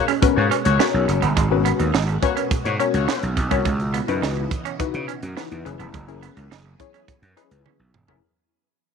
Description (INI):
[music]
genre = early-eighties boogie funk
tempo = 105 BPM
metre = 4/4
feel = straight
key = unclear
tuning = A4 = 440 Hz
[part]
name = mellow horn section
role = second line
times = 0.0-3.3 s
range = A#3 to C#5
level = -26 LUFS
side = left 13 dB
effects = none
[part]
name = phased string machine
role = sustained chords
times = 0.0-8.2 s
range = B2 to D#5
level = -31 LUFS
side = equal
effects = ensemble chorus, phaser
[part]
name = clean electric guitar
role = riff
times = 0.1-8.2 s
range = G#3 to D#4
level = -27 LUFS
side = right 16 dB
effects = lush chorus
[part]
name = tight funk drum kit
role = drums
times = 0.1-8.2 s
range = hi-hat, kick drum, snare drum, toms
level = -24 LUFS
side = right 4 dB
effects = none
[part]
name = funky polysynth comp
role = accompaniment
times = 0.2-8.2 s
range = C#4 to C#5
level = -24 LUFS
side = left 14 dB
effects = chorus
[part]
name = gritty slap bass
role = bass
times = 0.2-8.2 s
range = E1 to C#3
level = -23 LUFS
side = right 1 dB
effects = overdrive
[sound]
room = light reverb, small room ambience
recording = 1960s-style stereo with parts hard left and right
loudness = -18 LUFS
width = side -6 dB against mid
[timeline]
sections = 0.0-8.2 A section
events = fade-out 0.0-8.2; drum fill 7.7-8.2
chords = 0.0 G#m11; 3.7 C#m11; 5.7 F#9sus4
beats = 0.23 0.80 | 1.37 1.94 2.51 3.08 | 3.65 4.22 4.80 5.37 | 5.94 6.51 7.08 7.65